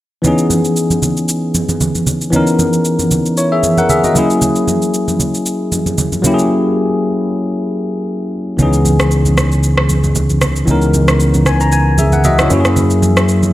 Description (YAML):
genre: amapiano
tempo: 115 BPM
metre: 4/4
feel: swing 55% on 16ths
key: C# dorian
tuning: A4 = 441 Hz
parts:
  - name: bell-like tine electric piano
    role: accompaniment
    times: 0.2-13.5 s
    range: D#3 to A#5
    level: -14 LUFS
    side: left 1 dB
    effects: analog chorus
  - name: electronic shaker and rim click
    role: drums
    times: 0.2-13.5 s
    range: none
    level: -19 LUFS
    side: equal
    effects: none
  - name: congas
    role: percussion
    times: 0.2-13.5 s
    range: none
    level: -19 LUFS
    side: right 3 dB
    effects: none
  - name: fingered electric bass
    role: bass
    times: 8.6-13.5 s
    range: C#2 to F#2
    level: -13 LUFS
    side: equal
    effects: none
room: light reverb, digital ambience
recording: none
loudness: -11 LUFS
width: side -15 dB against mid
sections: 0.2-13.5 A section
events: break 6.5-8.6; tine electric piano fill 11.2-12.8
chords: 0.2 C#m9; 4.2 F#9; 8.6 C#m9; 12.5 F#9